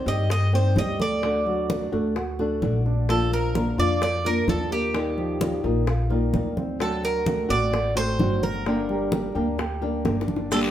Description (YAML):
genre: latin, Cuban son and guajira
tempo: 129 BPM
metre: 4/4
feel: straight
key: G minor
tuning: A4 = 440 Hz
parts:
  - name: Cuban tres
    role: melody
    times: 0.0-10.6 s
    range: G4 to Eb5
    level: -26 LUFS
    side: right 2 dB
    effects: none
  - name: flamenco guitar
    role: accompaniment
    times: 0.0-10.7 s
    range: D3 to G4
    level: -28 LUFS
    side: left 3 dB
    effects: none
  - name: dark concert grand piano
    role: arpeggios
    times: 0.0-10.7 s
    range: F3 to G5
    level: -29 LUFS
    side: right 3 dB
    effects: none
  - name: upright bass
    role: bass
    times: 0.1-10.7 s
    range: G1 to G2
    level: -27 LUFS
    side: equal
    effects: none
  - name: bongos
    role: percussion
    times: 0.1-10.7 s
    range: none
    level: -33 LUFS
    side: left 3 dB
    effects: none
  - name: congas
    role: percussion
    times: 0.1-10.7 s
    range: none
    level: -30 LUFS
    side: equal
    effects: none
  - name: guiro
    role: percussion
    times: 10.5-10.7 s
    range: none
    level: -29 LUFS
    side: left 3 dB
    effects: none
  - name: maracas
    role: percussion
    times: 10.5-10.7 s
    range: none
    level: -35 LUFS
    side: right 4 dB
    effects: none
room: moderate studio reverb, RT60 0.8 s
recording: heard from further back in the room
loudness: -21 LUFS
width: side -11 dB against mid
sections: 0.0-10.5 A section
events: drum fill 10.1-10.5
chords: 0.0 Cm; 1.2 D; 3.1 Bb; 4.9 Ebadd9; 6.8 D7; 8.7 Gm